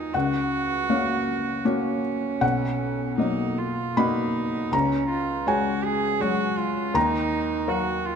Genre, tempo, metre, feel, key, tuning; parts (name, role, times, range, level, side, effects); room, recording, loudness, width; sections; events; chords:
neoclassical piano and strings; 79 BPM; 3/4; rubato; A4 = 441 Hz
warm cello; second line; 0.0-8.2 s; Db4 to Ab4; -27 LUFS; right 6 dB
felt-muted upright piano; accompaniment; 0.0-8.2 s; B1 to B5; -24 LUFS; left 2 dB
moderate concert hall reverb, RT60 2.0 s; minimal, uncompressed stereo recording; -22 LUFS; side -7 dB against mid
0.0-8.2 A section
0.1 Gb/Db; 2.4 Bmaj7; 4.7 Dbsus4; 7.0 Ebmadd9